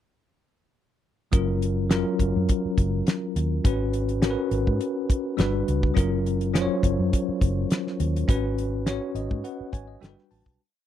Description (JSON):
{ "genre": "lush 1970s-style soul", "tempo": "104 BPM", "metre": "4/4", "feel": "swing 54% on 16ths", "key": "F# major", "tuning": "A4 = 439 Hz", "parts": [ { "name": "bell-like tine electric piano", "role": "accompaniment", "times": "1.3-10.6 s", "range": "F#3 to A5", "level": "-26 LUFS", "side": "left 2 dB", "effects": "fast stereo tremolo" }, { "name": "vintage muted fingered electric bass", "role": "bass", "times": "1.3-10.6 s", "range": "F#1 to G#2", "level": "-27 LUFS", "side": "equal", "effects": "none" }, { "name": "damped 70s drum kit", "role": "drums", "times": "1.3-10.6 s", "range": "hi-hat, kick drum, snare drum", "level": "-23 LUFS", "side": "equal", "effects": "none" } ], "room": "little or no reverb", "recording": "dry, close 1970s-style studio recording, lossy compression artefacts", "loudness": "-22 LUFS", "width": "side -11 dB against mid", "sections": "1.3-10.6 verse", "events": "fade-out 8.3-10.6; tine electric piano fill 8.9-10.6", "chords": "1.3 F#maj7; 3.6 C#7sus4/G#; 5.4 Gmaj7; 6.0 F#maj7; 8.3 C#7sus4/G#; 10.0 Gmaj7", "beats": "| 1.33 1.91 2.49 3.07 | 3.65 4.23 4.81 5.39 | 5.97 6.55 7.13 7.71 | 8.29 8.86 9.44 10.02" }